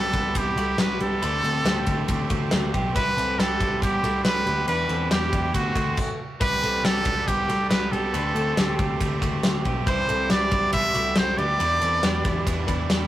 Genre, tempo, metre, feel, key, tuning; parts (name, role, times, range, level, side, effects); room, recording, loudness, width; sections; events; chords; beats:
jangly indie pop; 139 BPM; 4/4; straight; A4 = 440 Hz
brilliant trumpet; melody; 0.0-12.7 s; F#4 to E5; -25 LUFS; right 1 dB; analog delay
biting overdriven guitar; accompaniment; 0.0-13.1 s; E2 to G4; -30 LUFS; right 4 dB
twelve-string electric guitar; arpeggios; 0.0-13.1 s; A3 to B4; -32 LUFS; left 2 dB
vintage muted picked electric bass; bass; 0.0-13.1 s; B1 to E2; -28 LUFS; equal
big rock drum kit; drums; 0.1-13.0 s; crash cymbal, kick drum, ride cymbal, snare drum; -26 LUFS; left 1 dB
light reverb; rough rehearsal-room recording; -21 LUFS; side -13 dB against mid
0.0-6.4 A section; 6.4-13.1 A section
stop 6.0-6.4
0.0 Cmaj7; 1.2 D7sus4; 3.0 Cmaj7; 4.7 Em7; 5.5 D7; 6.4 Cmaj7; 8.1 D7sus4; 9.9 Cmaj7; 11.6 Em7
0.35 0.78 | 1.22 1.65 2.08 2.52 | 2.95 3.38 3.82 4.25 | 4.68 5.12 5.55 5.98 | 6.42 6.85 7.28 7.71 | 8.14 8.58 9.01 9.44 | 9.87 10.31 10.74 11.17 | 11.60 12.04 12.47 12.90